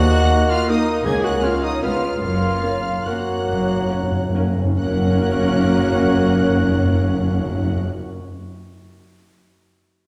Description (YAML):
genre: classical, orchestral ballroom waltz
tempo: 128-170 BPM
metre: 3/4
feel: rubato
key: F# major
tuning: A4 = 440 Hz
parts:
  - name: warm symphonic violin section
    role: melody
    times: 0.0-7.8 s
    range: D#6 to G#6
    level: -35 LUFS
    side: equal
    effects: none
  - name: clear clarinet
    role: second line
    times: 0.0-7.8 s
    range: D#4 to G#4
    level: -32 LUFS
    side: equal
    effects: none
  - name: clear symphonic violin section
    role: second line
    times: 0.0-7.8 s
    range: D#5 to G#5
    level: -34 LUFS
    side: equal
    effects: none
  - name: mellow hollow small flute group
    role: second line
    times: 0.0-7.8 s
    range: C#5 to D#5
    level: -31 LUFS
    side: equal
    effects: none
  - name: warm oboe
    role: second line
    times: 0.0-7.8 s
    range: D#5 to G#5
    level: -33 LUFS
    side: equal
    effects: none
  - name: warm bassoon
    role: accompaniment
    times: 0.0-7.8 s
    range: A#3 to B3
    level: -30 LUFS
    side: equal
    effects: none
  - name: mellow trumpet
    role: stabs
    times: 0.0-7.8 s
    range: D#4 to G#4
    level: -31 LUFS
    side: equal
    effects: none
  - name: rich symphonic cello section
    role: bass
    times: 0.0-7.8 s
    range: C#2 to F#2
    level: -28 LUFS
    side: equal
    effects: none
  - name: rich symphonic double bass section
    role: bass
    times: 0.0-7.8 s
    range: F#1 to D#2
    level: -27 LUFS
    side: equal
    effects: none
  - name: clear symphonic viola section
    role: accompaniment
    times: 0.3-7.8 s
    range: A#3 to B4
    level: -31 LUFS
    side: equal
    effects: none
  - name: mellow French horn section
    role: sustained chords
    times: 0.3-7.8 s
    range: A#3 to D#4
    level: -27 LUFS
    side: equal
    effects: none
  - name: timpani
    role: percussion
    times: 1.1-7.8 s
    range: F#2 to C#3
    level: -25 LUFS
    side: equal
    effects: none
room: wet scoring stage reverb, RT60 1.9 s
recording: heard from further back in the room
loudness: -19 LUFS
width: mono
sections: 0.0-4.8 A section; 4.8-7.4 B section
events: slowing down 1.6-4.8; timpani fill 2.2-4.8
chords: 0.0 D#m; 1.1 F#maj13/C#; 1.8 C#7; 2.2 F#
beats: 0.30 0.69 | 1.06 1.43 1.84 | 2.23 2.64 3.07 | 3.48 3.90 4.35 | 4.79 5.22 5.68 | 6.12 6.55 7.01